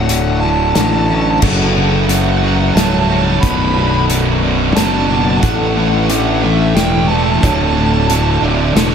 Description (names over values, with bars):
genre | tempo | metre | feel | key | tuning
post-rock | 90 BPM | 3/4 | straight | B minor | A4 = 441 Hz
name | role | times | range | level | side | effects
smooth overdriven lead guitar | melody | 0.0-8.9 s | C#5 to B5 | -19 LUFS | right 2 dB | analog delay
pedal harmonium | sustained chords | 0.0-8.9 s | D3 to A4 | -27 LUFS | right 2 dB | none
electric guitar through a small old amp | arpeggios | 0.0-8.9 s | B1 to A4 | -26 LUFS | left 1 dB | none
vibraphone with medium hard mallets | arpeggios | 0.0-8.9 s | D4 to F#5 | -26 LUFS | right 3 dB | analog delay
sludgy distorted guitar | riff | 0.0-8.9 s | B1 to A3 | -18 LUFS | left 7 dB | overdrive
fuzz fingered electric bass | bass | 0.0-8.9 s | B0 to A1 | -17 LUFS | right 1 dB | overdrive
loose indie drum kit | drums | 0.1-8.9 s | crash cymbal, hi-hat, kick drum, snare drum | -18 LUFS | equal | none
distorted electric guitar | riff | 1.4-8.9 s | B1 to A3 | -19 LUFS | right 11 dB | overdrive
room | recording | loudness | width
moderate lush hall reverb, RT60 3.2 s | dreamy mix soaked in reverb | -11 LUFS | side -7 dB against mid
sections
0.0-8.9 A section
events
none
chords
0.0 Dmaj7; 1.4 F#m7; 3.4 Bm7; 5.4 A7sus4; 7.4 Dmaj7